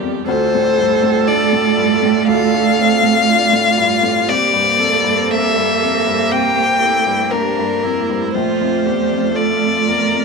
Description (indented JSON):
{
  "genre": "neoclassical piano and strings",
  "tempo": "59 BPM",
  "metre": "4/4",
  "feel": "rubato",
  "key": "D minor",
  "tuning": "A4 = 440 Hz",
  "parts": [
    { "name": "rich cello", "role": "second line", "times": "0.0-10.2 s", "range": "G3 to Bb3", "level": "-19 LUFS", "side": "right 13 dB", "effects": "none" },
    { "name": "clear upright piano", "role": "accompaniment", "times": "0.0-10.2 s", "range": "Bb1 to D4", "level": "-22 LUFS", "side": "left 10 dB", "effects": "none" },
    { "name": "clear viola", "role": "accompaniment", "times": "0.0-10.2 s", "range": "D4 to Bb4", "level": "-22 LUFS", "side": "right 13 dB", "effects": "none" },
    { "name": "rich studio string section", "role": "sustained chords", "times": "0.0-10.2 s", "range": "F3 to D5", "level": "-26 LUFS", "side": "equal", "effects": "none" },
    { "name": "rich violin", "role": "melody", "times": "0.3-10.2 s", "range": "Bb4 to G5", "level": "-16 LUFS", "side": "left 6 dB", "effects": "none" }
  ],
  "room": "wet echo chamber reverb, RT60 1.4 s, studio ambience",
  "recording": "1960s-style stereo with parts hard left and right",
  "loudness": "-13 LUFS",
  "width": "side -4 dB against mid",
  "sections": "0.0-10.2 A section",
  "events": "none",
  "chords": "0.3 Dm; 4.3 C7; 8.3 Bbmaj7",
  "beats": "| 0.28 1.28 2.28 3.28 | 4.29 5.30 6.32 7.33 | 8.34 9.35"
}